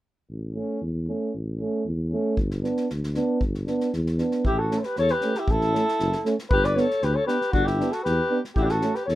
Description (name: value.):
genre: balkan folk, Balkan brass band.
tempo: 116 BPM.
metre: 2/4.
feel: straight.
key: A mixolydian.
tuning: A4 = 440 Hz.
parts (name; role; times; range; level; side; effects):
dark tuba; bass; 0.3-9.2 s; F#1 to E2; -26 LUFS; equal; none.
mellow euphonium; accompaniment; 0.6-8.9 s; A3 to B3; -26 LUFS; right 3 dB; none.
mellow trombone; accompaniment; 0.6-8.9 s; C#4 to D4; -33 LUFS; left 4 dB; none.
unplugged drum kit; percussion; 2.4-9.2 s; kick drum, snare drum; -28 LUFS; equal; none.
mellow flugelhorn; melody; 4.5-9.2 s; F#4 to D5; -24 LUFS; left 1 dB; none.
clear alto saxophone; second line; 4.5-9.2 s; D4 to B4; -30 LUFS; left 2 dB; none.
room: little or no reverb.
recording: rough home demo mix.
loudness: -22 LUFS.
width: side -15 dB against mid.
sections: 0.3-4.4 A section; 4.4-9.2 B section.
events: none.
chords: 0.3 A; 2.4 G; 4.4 A; 6.5 G; 8.6 A.